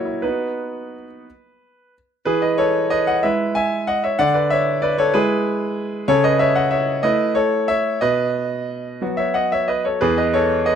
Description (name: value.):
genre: classical-period piano sonatina.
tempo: 58-64 BPM (dotted quarters).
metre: 6/8.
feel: rubato.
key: E major.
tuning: A4 = 440 Hz.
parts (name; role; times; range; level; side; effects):
bright concert grand piano; solo; 0.0-10.8 s; E2 to G#5; -17 LUFS; equal; none.
room: light reverb.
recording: close, detailed microphones.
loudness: -17 LUFS.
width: side -8 dB against mid.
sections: 0.0-2.3 A section; 2.3-10.8 B section.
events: none.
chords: 0.2 B; 2.3 E; 4.2 E7/D; 6.1 A/C#; 8.0 B; 10.0 E.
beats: | 0.23 1.25 | 2.26 3.23 | 4.19 5.13 | 6.08 7.04 | 8.02 9.02 | 10.01.